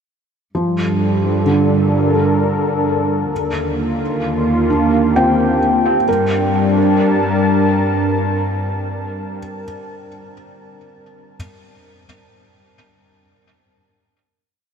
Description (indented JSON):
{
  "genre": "ambient",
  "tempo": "65 BPM",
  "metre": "3/4",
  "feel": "straight",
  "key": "G minor",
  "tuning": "A4 = 437 Hz",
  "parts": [
    { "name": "felt-muted upright piano", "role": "arpeggios", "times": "0.5-11.4 s", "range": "D3 to G5", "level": "-20 LUFS", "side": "equal", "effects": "tape echo" },
    { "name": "warm studio cello section", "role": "bass", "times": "0.5-9.4 s", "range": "Eb2 to G2", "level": "-21 LUFS", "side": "equal", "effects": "none" },
    { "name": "warm analog pad", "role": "sustained chords", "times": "0.6-9.6 s", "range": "G3 to A5", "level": "-17 LUFS", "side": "equal", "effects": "chorus" }
  ],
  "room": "wet huge ambient reverb, RT60 7.5 s",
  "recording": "none",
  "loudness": "-14 LUFS",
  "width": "side -7 dB against mid",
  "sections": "0.5-6.1 A section; 6.1-8.8 final chord",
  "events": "none",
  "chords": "0.5 Gm7; 3.3 Ebmaj7; 6.1 Gm"
}